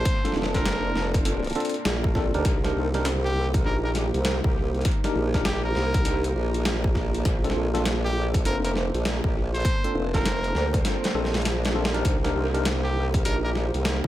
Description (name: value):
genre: glitch hop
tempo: 100 BPM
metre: 4/4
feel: swing 64% on 16ths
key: C dorian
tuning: A4 = 440 Hz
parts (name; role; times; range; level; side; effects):
- brilliant trumpet; melody; 0.0-13.5 s; G4 to C5; -33 LUFS; equal; dub echo
- dark analog pad; sustained chords; 0.0-14.1 s; Bb3 to A5; -33 LUFS; right 2 dB; chorus, vintage 12-bit sampler grit, sidechain pumping
- formant-sweep wobble bass; bass; 0.0-14.1 s; F1 to D2; -26 LUFS; equal; chorus, tube saturation
- boom bap sampler-style drum kit; drums; 0.1-14.0 s; hi-hat, snare drum; -30 LUFS; equal; dub echo
- electronic kick drum; drums; 0.1-14.1 s; none; -25 LUFS; equal; none
- tine electric piano; stabs; 0.2-13.4 s; C4 to Bb4; -31 LUFS; left 1 dB; medium stereo tremolo, sidechain pumping, dub echo
room: light reverb, digital ambience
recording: echo-heavy mix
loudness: -22 LUFS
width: side -14 dB against mid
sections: 0.0-14.1 A section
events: kick drops out 10.9-12.1; drum fill 10.9-12.1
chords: 0.0 Bbmaj9; 2.5 Cm7; 7.3 Bbmaj9; 12.1 Cm7